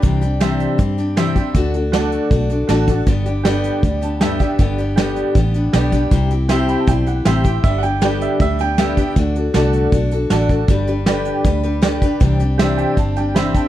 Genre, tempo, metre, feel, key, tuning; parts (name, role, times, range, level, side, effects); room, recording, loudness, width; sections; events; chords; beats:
honky-tonk and classic country; 158 BPM; 4/4; straight; G major; A4 = 440 Hz
picked steel-string acoustic guitar; accompaniment; 0.0-13.7 s; G2 to B4; -19 LUFS; left 2 dB
vintage muted fingered electric bass; bass; 0.0-13.6 s; G1 to G2; -20 LUFS; equal
soft brush drum kit; drums; 0.0-13.6 s; hi-hat, kick drum, snare drum; -18 LUFS; equal
honky-tonk upright piano; accompaniment; 0.4-13.7 s; F#4 to B5; -24 LUFS; right 8 dB
bright upright piano; second line; 7.6-9.2 s; E5 to G5; -22 LUFS; right 6 dB
light reverb; dark, warm production; -14 LUFS; side -13 dB against mid
0.0-4.6 A section; 4.6-13.7 A section
honky-tonk piano fill 3.8-4.6, 6.5-7.6, 12.6-13.7
0.0 Cadd9; 1.6 D; 3.1 G; 6.1 C; 7.6 G; 9.2 D; 10.7 G; 12.2 Cadd9
| 0.03 0.41 0.79 1.17 | 1.55 1.94 2.31 2.69 | 3.08 3.46 3.84 4.22 | 4.60 4.98 5.36 5.74 | 6.12 6.50 6.88 7.26 | 7.64 8.02 8.40 8.79 | 9.17 9.55 9.93 10.31 | 10.69 11.07 11.45 11.83 | 12.21 12.59 12.97 13.35